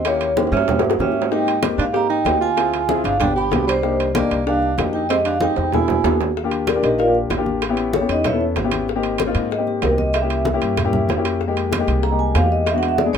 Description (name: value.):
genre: Afro-Cuban jazz.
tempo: 190 BPM.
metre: 4/4.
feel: straight.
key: Eb major.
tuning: A4 = 442 Hz.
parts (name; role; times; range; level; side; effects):
vibraphone with medium mallets; melody; 0.0-13.2 s; C#4 to B5; -21 LUFS; right 1 dB; none.
breathy tenor saxophone; second line; 0.0-6.2 s; G3 to G4; -23 LUFS; right 7 dB; none.
upright bass; bass; 0.0-13.2 s; G1 to Ab2; -25 LUFS; right 1 dB; none.
timbales; percussion; 0.0-13.2 s; none; -26 LUFS; right 9 dB; none.
warm grand piano; accompaniment; 0.1-13.2 s; Ab3 to A4; -22 LUFS; left 6 dB; none.
bongos; percussion; 0.1-13.1 s; none; -27 LUFS; left 8 dB; none.
congas; percussion; 0.1-13.2 s; none; -27 LUFS; right 1 dB; none.
room: light reverb.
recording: minimal, uncompressed stereo recording.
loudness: -16 LUFS.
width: side -7 dB against mid.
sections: 0.0-6.4 A section; 6.4-13.2 B section.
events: drum fill 0.4-1.3, 5.6-6.4; vibraphone solo 6.4-13.2.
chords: 0.1 Eb7b9; 1.3 Abmaj9; 2.6 Dm7b5; 3.2 G7; 3.8 Cm9; 5.1 Fm9; 5.7 E7#11; 6.4 Ebmaj9; 7.6 A9; 8.9 Abmaj9; 10.1 C7b9; 11.4 Fm11; 12.7 E9.